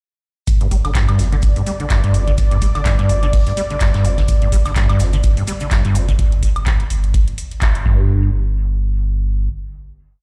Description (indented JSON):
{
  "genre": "acid house",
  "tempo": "126 BPM",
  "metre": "4/4",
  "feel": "swing 56% on 16ths",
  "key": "unclear",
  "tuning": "A4 = 440 Hz",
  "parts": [
    { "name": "lush unison pad", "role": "sustained chords", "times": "1.4-6.2 s", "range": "D5", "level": "-29 LUFS", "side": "equal", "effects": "chorus, sidechain pumping" },
    { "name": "warm sub bass", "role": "bass", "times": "0.5-9.5 s", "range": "G1", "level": "-21 LUFS", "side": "equal", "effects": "sidechain pumping" },
    { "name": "electro analog drum machine", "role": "drums", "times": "0.5-7.8 s", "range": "handclaps, hi-hat, woodblock", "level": "-29 LUFS", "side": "equal", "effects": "studio reverb" },
    { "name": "electronic kick drum", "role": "drums", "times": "0.5-8.0 s", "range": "none", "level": "-18 LUFS", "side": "equal", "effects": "studio reverb" },
    { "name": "vintage brush drum kit", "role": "drums", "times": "0.5-6.1 s", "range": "hi-hat, shaker, snare drum", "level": "-39 LUFS", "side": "equal", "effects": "high-pass filter on hats, studio reverb, high-pass filter on snare, high-pass filter on perc, high-pass filter on room" },
    { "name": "acid bass, saw", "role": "riff", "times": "0.6-8.3 s", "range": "F2 to G3", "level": "-22 LUFS", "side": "equal", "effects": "overdrive, ensemble chorus, dub echo" },
    { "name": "maracas", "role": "percussion", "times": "4.3-6.2 s", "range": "none", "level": "-38 LUFS", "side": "equal", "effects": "none" }
  ],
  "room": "studio reverb",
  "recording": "played on a big sound system in a bare room, large studio reverb",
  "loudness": "-16 LUFS",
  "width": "mono",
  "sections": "0.5-8.1 groove; 8.1-10.2 final hit",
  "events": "band accent 7.6",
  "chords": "0.5 G5; 7.9 N.C."
}